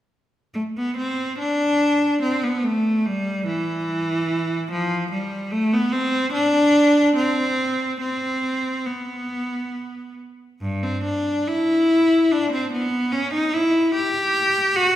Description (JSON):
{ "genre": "classical, baroque-style suite movement for unaccompanied cello", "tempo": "65-75 BPM", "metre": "3/4", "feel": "rubato", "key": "E minor from 10.6 s", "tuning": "A4 = 440 Hz", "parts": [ { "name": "clear cello", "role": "solo", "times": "0.5-15.0 s", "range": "G2 to G4", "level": "-19 LUFS", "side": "equal", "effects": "none" } ], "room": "wet recital hall reverb, RT60 1.7 s", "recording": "heard from further back in the room", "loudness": "-19 LUFS", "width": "side -12 dB against mid", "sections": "0.5-15.0 A section", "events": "none", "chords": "none" }